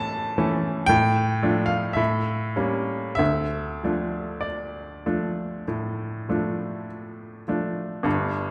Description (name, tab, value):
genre	classical, romantic nocturne for solo piano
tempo	46-59 BPM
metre	4/4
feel	rubato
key	D minor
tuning	A4 = 440 Hz
part	bright upright piano	solo	0.0-8.5 s	G1 to A5	-26 LUFS	equal	none
room	wet recital hall reverb, RT60 1.7 s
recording	none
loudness	-25 LUFS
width	mono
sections	0.0-8.1 A section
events	none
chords	0.0 A; 0.9 Dm/A; 2.0 A7b9; 3.2 Dm